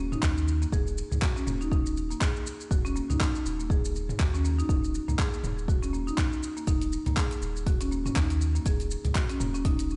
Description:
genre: afro house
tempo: 121 BPM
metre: 4/4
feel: swing 57% on 16ths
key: Eb minor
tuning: A4 = 438 Hz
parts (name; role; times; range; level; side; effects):
- marimba with medium hard mallets; arpeggios; 0.0-9.8 s; Bb3 to Ab4; -35 LUFS; equal; sidechain pumping, tape echo
- warm sub bass; bass; 0.0-10.0 s; Eb1 to Eb2; -32 LUFS; equal; tube saturation, sidechain pumping
- deep house drum kit; drums; 0.1-10.0 s; handclaps, hi-hat, shaker, toms; -37 LUFS; equal; none
- electronic kick drum; drums; 0.2-9.8 s; none; -29 LUFS; equal; none
room: digital ambience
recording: played on a big sound system in a bare room, stone room reverb, nothing above 11.0 kHz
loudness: -28 LUFS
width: mono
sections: 0.0-10.0 A section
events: none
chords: 0.0 Eb5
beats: 0.23 | 0.72 1.22 1.72 2.21 | 2.71 3.20 3.70 4.20 | 4.69 5.19 5.68 6.18 | 6.67 7.17 7.67 8.16 | 8.66 9.15 9.65

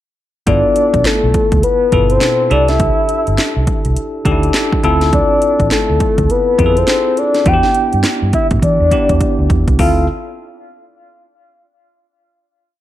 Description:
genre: R&B, new jack swing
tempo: 103 BPM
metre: 4/4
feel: swing 61% on 16ths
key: D dorian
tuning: A4 = 435 Hz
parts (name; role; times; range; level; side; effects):
- soft octave-layered synth lead; melody; 0.5-10.1 s; A4 to G5; -15 LUFS; left 2 dB; chorus, tremolo
- bell-like tine electric piano; accompaniment; 0.5-10.1 s; B2 to A4; -18 LUFS; equal; fast stereo tremolo
- vintage muted fingered electric bass; bass; 0.5-10.1 s; G1 to E3; -16 LUFS; right 1 dB; none
- house drum kit; drums; 0.5-10.0 s; handclaps, hi-hat, kick drum, snare drum; -17 LUFS; right 1 dB; overdrive
room: light reverb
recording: dark, warm production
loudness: -11 LUFS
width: side -13 dB against mid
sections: 0.5-9.8 verse; 9.8-12.1 final chord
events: drum fill 8.6-9.8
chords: 0.5 G13; 2.5 C69; 4.8 Dm7; 7.5 Em7; 9.8 Dm7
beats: | 0.47 1.05 1.64 2.22 | 2.80 3.38 3.96 4.55 | 5.13 5.71 6.29 6.88 | 7.46 8.04 8.63 9.21 | 9.79

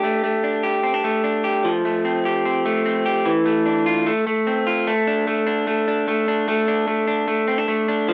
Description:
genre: indie pop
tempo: 149 BPM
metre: 4/4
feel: straight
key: unclear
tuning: A4 = 439 Hz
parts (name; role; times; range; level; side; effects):
- electric guitar through a small old amp; solo; 0.0-8.1 s; E3 to G4; -20 LUFS; equal; none
room: moderate stone room reverb, RT60 1.1 s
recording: band playing live in one room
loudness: -21 LUFS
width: mono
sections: 0.0-4.9 A section; 4.9-8.1 B section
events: none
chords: 0.0 Gsus2; 1.6 Fadd9; 3.3 Dmadd9; 4.1 F; 4.9 Asus4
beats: | 0.04 0.44 0.84 1.25 | 1.65 2.05 2.46 2.86 | 3.26 3.66 4.07 4.47 | 4.87 5.27 5.68 6.08 | 6.48 6.88 7.28 7.68 | 8.09

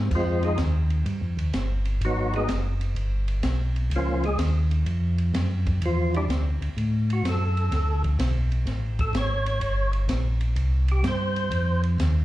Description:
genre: soul jazz organ trio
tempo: 126 BPM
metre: 4/4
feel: swing 68% on 8ths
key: unclear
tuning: A4 = 436 Hz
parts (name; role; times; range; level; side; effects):
- mellow tonewheel organ; bass; 0.0-12.2 s; Gb1 to A2; -23 LUFS; equal; slow rotary speaker
- percussive tonewheel organ; melody; 0.1-11.8 s; F3 to Db5; -28 LUFS; equal; slow rotary speaker, overdrive, chorus vibrato, plate reverb, slapback echo
- open jazz drum kit; drums; 0.1-12.1 s; crash cymbal, hi-hat, kick drum, ride cymbal, snare drum; -32 LUFS; equal; none
room: little or no reverb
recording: live gig heard through the venue's PA, club reverb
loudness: -22 LUFS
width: side -15 dB against mid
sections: 0.1-12.2 A section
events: tonewheel organ solo 0.1-12.2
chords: 0.1 Fm9; 2.0 Abm7; 3.0 G; 3.9 Gbmaj7; 5.8 Em7; 6.8 Gbm; 7.7 D5; 9.6 Gm; 10.6 C5; 11.5 F7(no3)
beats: | 0.12 0.59 1.06 1.54 | 2.02 2.49 2.97 3.44 | 3.92 4.39 4.87 5.35 | 5.82 6.30 6.77 7.25 | 7.72 8.20 8.67 9.15 | 9.62 10.10 10.57 11.05 | 11.52 12.00

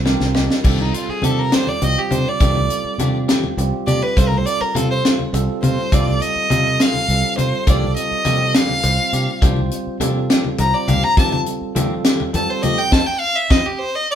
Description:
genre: electric jazz fusion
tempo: 68 BPM (dotted quarters)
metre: 6/8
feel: straight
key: unclear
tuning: A4 = 439 Hz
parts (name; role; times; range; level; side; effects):
- fingered electric bass; bass; 0.0-13.6 s; C2 to F3; -21 LUFS; right 1 dB; none
- bell-like tine electric piano; accompaniment; 0.1-13.6 s; G3 to G5; -26 LUFS; right 4 dB; fast stereo tremolo
- clean electric guitar; stabs; 0.1-13.6 s; Eb3 to G4; -28 LUFS; left 5 dB; none
- tight funk drum kit; drums; 0.1-13.6 s; crash cymbal, hi-hat, kick drum, snare drum; -18 LUFS; equal; none
- congas; percussion; 0.1-13.6 s; none; -25 LUFS; left 3 dB; none
- clear violin; melody; 0.8-14.2 s; Eb4 to Bb5; -20 LUFS; equal; none
room: moderate studio reverb, RT60 0.7 s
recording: band playing live in one room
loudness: -15 LUFS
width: side -9 dB against mid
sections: 0.6-14.2 A section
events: drum fill 0.0-0.6; tine electric piano fill 0.0-0.6; violin solo 0.6-14.2; band accent 12.9-14.2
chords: 0.0 Cm9; 0.6 F13/C; 4.2 Csus4; 7.7 Ebmaj9/C (rootless); 11.2 F9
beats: | 0.65 1.53 | 2.41 3.29 | 4.16 5.04 | 5.92 6.80 | 7.67 8.55 | 9.42 10.30 | 11.17 12.05 | 12.92 13.80

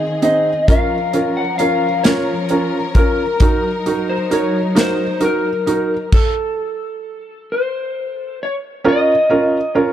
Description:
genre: six-eight pop ballad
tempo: 44 BPM (dotted quarters)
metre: 6/8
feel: straight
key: Bb minor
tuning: A4 = 440 Hz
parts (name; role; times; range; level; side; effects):
- electric slide guitar; melody; 0.0-9.9 s; A4 to Gb5; -19 LUFS; left 2 dB; none
- felt-muted upright piano; accompaniment; 0.0-9.9 s; C4 to Bb4; -18 LUFS; right 3 dB; none
- warm studio string section; sustained chords; 0.0-6.1 s; Eb3 to Bb4; -24 LUFS; left 2 dB; none
- modern studio drum kit; drums; 0.2-6.3 s; crash cymbal, hi-hat, kick drum, snare drum; -15 LUFS; equal; none
room: light reverb, small room ambience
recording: dark, warm production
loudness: -14 LUFS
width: side -11 dB against mid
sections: 0.0-8.9 A section; 8.9-9.9 B section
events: stop 6.1-8.9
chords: 0.0 Ab; 0.7 Bbm; 3.4 Ebm; 6.1 N.C.; 8.9 Bbm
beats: | 0.68 2.04 | 3.41 4.77 | 6.13 7.49 | 8.85

